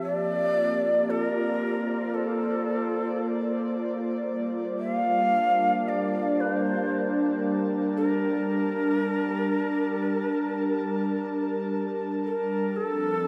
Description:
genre	ambient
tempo	56 BPM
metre	4/4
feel	straight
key	unclear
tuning	A4 = 440 Hz
part	breathy shakuhachi	melody	0.0-13.3 s	A4 to F5	-30 LUFS	equal	tape echo
part	airy breathy pad	sustained chords	0.0-13.3 s	F3 to A5	-29 LUFS	equal	chorus
room	wet cathedral reverb, RT60 6.4 s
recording	in a vast, echoing space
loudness	-26 LUFS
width	mono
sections	0.0-13.3 A section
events	none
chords	0.0 Bbmaj7; 4.3 Gm7

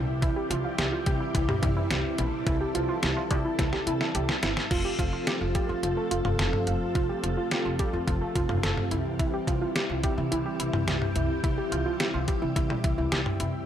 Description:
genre	synth-pop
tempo	107 BPM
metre	4/4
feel	straight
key	F major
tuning	A4 = 441 Hz
part	ensemble organ-string	sustained chords	0.0-13.6 s	C3 to A4	-31 LUFS	equal	ensemble chorus, shimmer reverb
part	warbly dusty pluck	arpeggios	0.0-13.6 s	E4 to A4	-32 LUFS	right 2 dB	chorus, slapback echo, shimmer reverb
part	upright bass	bass	0.0-13.5 s	F1 to C3	-32 LUFS	equal	none
part	detuned 8-bit digital drum machine	drums	0.2-13.5 s	cowbell, crash cymbal, hi-hat, kick drum, snare drum, toms	-28 LUFS	equal	overdrive
room	light reverb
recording	none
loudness	-25 LUFS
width	side -10 dB against mid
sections	0.0-4.7 A section; 4.7-13.7 B section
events	drum fill 3.6-4.7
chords	0.0 C; 4.7 F; 8.9 C

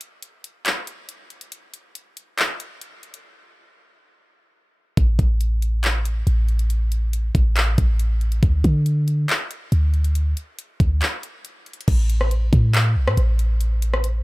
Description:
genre	hip hop, atmospheric cloud-rap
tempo	139 BPM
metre	4/4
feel	half-time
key	unclear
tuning	A4 = 445 Hz
part	smooth R&B drum kit	drums	0.0-14.1 s	crash cymbal, handclaps, hi-hat, kick drum, rim click	-22 LUFS	equal	none
part	clean 808-style bass	bass	5.0-14.2 s	A1 to D3	-18 LUFS	equal	none
room	little or no reverb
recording	none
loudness	-18 LUFS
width	side -21 dB against mid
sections	0.0-11.9 A section; 11.9-14.2 B section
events	break 0.0-5.0, 11.0-11.9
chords	none

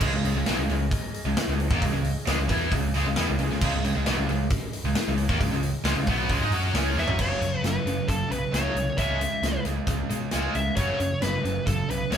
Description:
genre	hard rock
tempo	134 BPM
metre	4/4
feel	straight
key	C# minor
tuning	A4 = 440 Hz
part	bright large flute ensemble	sustained chords	0.0-7.2 s	C#4 to D#5	-43 LUFS	left 1 dB	none
part	distorted electric guitar	riff	0.0-12.2 s	F#2 to F#4	-32 LUFS	left 5 dB	overdrive
part	tight distorted guitar	riff	0.0-12.2 s	F#2 to F#4	-29 LUFS	right 4 dB	distortion
part	picked electric bass	bass	0.0-12.2 s	F#1 to B2	-28 LUFS	equal	none
part	big rock drum kit	drums	0.0-12.2 s	crash cymbal, hi-hat, kick drum, snare drum, toms	-28 LUFS	left 1 dB	none
part	high-gain lead guitar	melody	7.0-12.2 s	A4 to E5	-28 LUFS	equal	distortion
room	moderate studio reverb, RT60 0.8 s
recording	band playing live in one room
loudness	-23 LUFS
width	side -8 dB against mid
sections	0.0-7.2 A section; 7.2-12.2 B section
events	drum fill 7.0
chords	0.0 C#m; 7.2 F#5; 9.0 C#m; 10.8 F#5

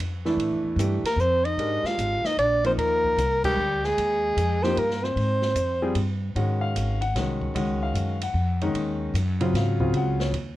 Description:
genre	modal jazz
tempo	151 BPM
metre	3/4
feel	swing 65% on 8ths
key	Ab mixolydian from 6.4 s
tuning	A4 = 439 Hz
part	upright bass	bass	0.0-10.6 s	Ab1 to A2	-27 LUFS	equal	none
part	open jazz drum kit	drums	0.0-10.5 s	crash cymbal, hi-hat, kick drum, ride cymbal, snare drum	-36 LUFS	equal	none
part	warm concert grand piano	accompaniment	0.3-10.3 s	Db3 to Gb5	-27 LUFS	left 1 dB	none
part	warm soprano saxophone	melody	1.1-6.0 s	G4 to F5	-24 LUFS	equal	plate reverb
part	breathy trombone	second line	1.1-6.0 s	G3 to F4	-30 LUFS	right 3 dB	none
room	light reverb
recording	worn, warbling old tape, cassette tape, warbly pitch drift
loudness	-22 LUFS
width	side -15 dB against mid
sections	0.0-6.4 A section; 6.4-10.6 B section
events	band accent 3.4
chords	0.0 Fmaj9; 1.6 Abmaj9; 6.4 Ab7sus4

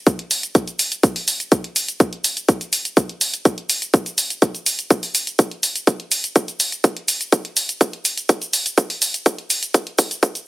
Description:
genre	house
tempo	124 BPM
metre	4/4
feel	straight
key	none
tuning	none
part	electronic hi-hat and cabasa	drums	0.1-10.4 s	none	-20 LUFS	equal	none
part	electronic kick drum	drums	0.1-10.3 s	none	-15 LUFS	equal	high-pass filter on kick, high-pass filter on room
room	little or no reverb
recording	heavily compressed radio sound, high-pass filter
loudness	-17 LUFS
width	side -20 dB against mid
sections	0.0-10.5 A section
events	build-up 0.0-10.5; drum fill 5.9-10.5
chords	none

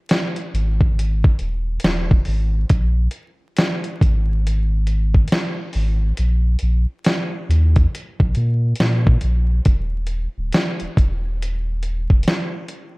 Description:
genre	lo-fi hip hop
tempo	69 BPM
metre	4/4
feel	swing 63% on 16ths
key	unclear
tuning	A4 = 444 Hz
part	dusty soul sampler-style drum kit	drums	0.1-12.9 s	hi-hat, kick drum, snare drum	-17 LUFS	equal	none
part	saturated sub bass	bass	0.5-12.2 s	D1 to Bb2	-18 LUFS	equal	none
room	little or no reverb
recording	dark, warm production, vinyl crackle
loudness	-17 LUFS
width	side -25 dB against mid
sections	0.0-9.7 A section; 9.7-13.0 B section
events	none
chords	none

